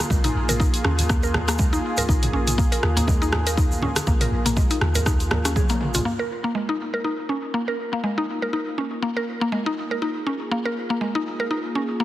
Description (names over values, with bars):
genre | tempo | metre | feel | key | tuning
afro house | 121 BPM | 4/4 | swing 56% on 16ths | unclear | A4 = 441 Hz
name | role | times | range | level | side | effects
warm analog pad | sustained chords | 0.0-12.0 s | Bb3 to Bb4 | -30 LUFS | equal | lush chorus, sidechain pumping
mallet-like synth pluck | arpeggios | 0.0-12.0 s | Ab3 to Bb4 | -25 LUFS | equal | chorus, sidechain pumping, dub echo
congas | percussion | 0.0-6.0 s | none | -31 LUFS | right 1 dB | none
egg shaker | percussion | 0.0-6.0 s | none | -33 LUFS | right 2 dB | none
warm 808-style bass | bass | 0.1-6.0 s | Bb1 to Eb2 | -25 LUFS | equal | sidechain pumping
electronic kick drum | drums | 0.1-5.7 s | none | -21 LUFS | equal | none
deep house drum kit | drums | 0.2-6.0 s | hi-hat, rim click, toms | -26 LUFS | equal | none
room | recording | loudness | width
moderate lush hall reverb, RT60 2.0 s | heavily compressed radio sound | -20 LUFS | side -14 dB against mid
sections
0.0-6.1 A section; 6.1-12.0 B section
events
drum fill 5.6-6.1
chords
0.0 Bb7(no3)